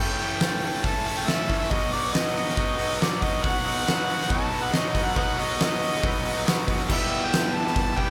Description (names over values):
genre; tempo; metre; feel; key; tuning
garage rock duo or trio; 139 BPM; 4/4; straight; unclear; A4 = 440 Hz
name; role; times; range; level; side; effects
overdriven harmonica; melody; 0.0-8.1 s; B4 to A5; -31 LUFS; equal; none
raw garage guitar; riff; 0.0-8.1 s; E2 to A4; -30 LUFS; equal; overdrive
oversized low-tuned drum kit; drums; 0.2-8.1 s; crash cymbal, hi-hat, kick drum, snare drum; -28 LUFS; equal; none
overdriven combo organ; sustained chords; 3.4-8.1 s; F#4 to F#5; -40 LUFS; equal; none
room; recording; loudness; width
small room ambience; none; -25 LUFS; mono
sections
0.0-6.9 A section; 6.9-8.1 B section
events
none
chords
0.0 A; 1.7 B; 6.9 Em